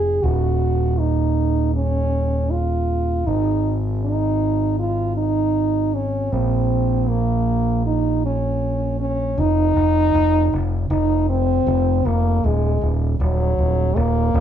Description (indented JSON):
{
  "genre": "post-rock",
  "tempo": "79 BPM",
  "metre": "4/4",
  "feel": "straight",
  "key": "Eb dorian",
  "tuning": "A4 = 437 Hz",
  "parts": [
    { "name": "warm French horn", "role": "melody", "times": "0.0-14.4 s", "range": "Gb3 to Ab4", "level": "-21 LUFS", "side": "right 1 dB", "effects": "none" },
    { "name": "growling fingered electric bass", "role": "bass", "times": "0.0-14.4 s", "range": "Eb1 to Bb1", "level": "-20 LUFS", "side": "right 1 dB", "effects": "overdrive" }
  ],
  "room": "moderate studio reverb, RT60 0.7 s",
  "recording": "band playing live in one room",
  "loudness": "-17 LUFS",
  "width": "side -9 dB against mid",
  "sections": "0.0-9.4 A section; 9.4-14.4 B section",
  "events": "none",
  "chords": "0.2 Ebm7; 3.3 Ab5; 6.3 Bbm; 9.4 F5; 12.4 Ebm",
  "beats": "| 0.23 0.99 1.75 2.52 | 3.28 4.04 4.80 5.57 | 6.33 7.09 7.85 8.62 | 9.38 10.14 10.90 11.66 | 12.43 13.19 13.95"
}